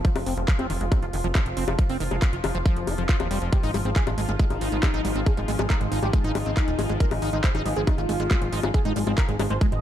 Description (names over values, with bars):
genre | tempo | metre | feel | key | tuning
psychedelic trance | 138 BPM | 4/4 | straight | unclear | A4 = 441 Hz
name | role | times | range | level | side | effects
bubbling stepped-filter texture | sustained chords | 0.0-9.8 s | F3 to F4 | -33 LUFS | left 1 dB | chorus, built-in reverb, sidechain pumping
liquid acid bass | riff | 0.0-9.7 s | Eb3 to F4 | -32 LUFS | moving between left 6 dB and right 6 dB | chorus, auto-pan, sidechain pumping, ping-pong delay
big-room dance drum kit | drums | 0.0-9.8 s | bongos, handclaps, hi-hat | -31 LUFS | left 4 dB | overdrive, studio reverb
electronic kick drum | drums | 0.0-9.7 s | none | -22 LUFS | equal | overdrive, studio reverb
warbly tape-like pad | texture | 0.0-9.8 s | C4 to Ab5 | -38 LUFS | right 1 dB | chorus, built-in reverb, sidechain pumping
plucky analog bass | bass | 0.2-9.8 s | Eb1 to Ab1 | -28 LUFS | equal | none
wide unison lead | melody | 3.5-9.8 s | Ab3 to Eb5 | -30 LUFS | equal | phaser, vintage 12-bit sampler grit, sidechain pumping, ping-pong delay
room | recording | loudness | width
little or no reverb | dark, warm production | -21 LUFS | side -11 dB against mid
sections
0.0-9.8 A section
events
fade-in on ambient pad 0.0-9.8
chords
0.0 F5